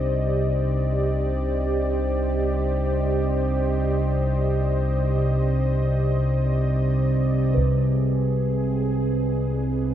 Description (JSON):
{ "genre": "dark ambient drone", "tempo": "free time", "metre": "none", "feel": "none", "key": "C harmonic minor", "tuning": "A4 = 442 Hz", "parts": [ { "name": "dark analog pad", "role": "sustained chords", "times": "0.0-9.9 s", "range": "G4 to Eb5", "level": "-26 LUFS", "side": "equal", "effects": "chorus" }, { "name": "deep rumbling drone", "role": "drone", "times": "0.0-9.9 s", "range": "C2 to C3", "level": "-22 LUFS", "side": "equal", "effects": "built-in reverb" }, { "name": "bronze singing bowl", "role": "texture", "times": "7.5-9.9 s", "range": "Cb5", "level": "-31 LUFS", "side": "right 9 dB", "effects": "none" }, { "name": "solo taiko drums", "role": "percussion", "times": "7.6-7.8 s", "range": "none", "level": "-26 LUFS", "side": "equal", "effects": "low-pass filter on perc" } ], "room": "moderate plate reverb, RT60 2.5 s", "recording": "echo-heavy mix, nothing above 7.5 kHz", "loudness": "-20 LUFS", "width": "side -10 dB against mid", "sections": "0.0-9.9 A section", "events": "fade-in on drum 0.0-9.9", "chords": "0.0 Cm; 7.6 Abm" }